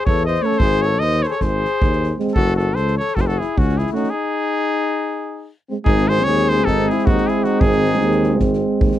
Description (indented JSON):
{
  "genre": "balkan folk, Balkan brass band",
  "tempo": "309 BPM (eighths)",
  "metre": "9/8",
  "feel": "straight",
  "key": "G# phrygian dominant",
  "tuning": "A4 = 439 Hz",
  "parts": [
    { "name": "clear trumpet", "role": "melody", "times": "0.0-8.4 s", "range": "F#4 to D#5", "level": "-21 LUFS", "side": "right 1 dB", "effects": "none" },
    { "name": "warm flugelhorn", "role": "second line", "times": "0.0-8.4 s", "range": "C#4 to B#4", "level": "-23 LUFS", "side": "left 12 dB", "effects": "none" },
    { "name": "warm tuba", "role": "bass", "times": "0.1-8.9 s", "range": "F#1 to E2", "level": "-20 LUFS", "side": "equal", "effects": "none" },
    { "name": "soft-mallet drum kit", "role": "percussion", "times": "0.1-9.0 s", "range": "kick drum, snare drum", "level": "-20 LUFS", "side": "equal", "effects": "none" },
    { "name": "dark euphonium", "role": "accompaniment", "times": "0.4-9.0 s", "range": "G#3 to A3", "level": "-21 LUFS", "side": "right 7 dB", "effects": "none" },
    { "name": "warm trombone", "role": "accompaniment", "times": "0.4-9.0 s", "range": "B#3 to C#4", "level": "-24 LUFS", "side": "left 4 dB", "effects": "none" }
  ],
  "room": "little or no reverb",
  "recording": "dry, close 1970s-style studio recording",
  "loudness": "-16 LUFS",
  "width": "side -12 dB against mid",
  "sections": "0.0-5.8 A section; 5.8-9.0 B section",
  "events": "break 4.1-5.8",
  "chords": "0.0 A; 0.6 G#; 2.3 F#m; 4.1 G#"
}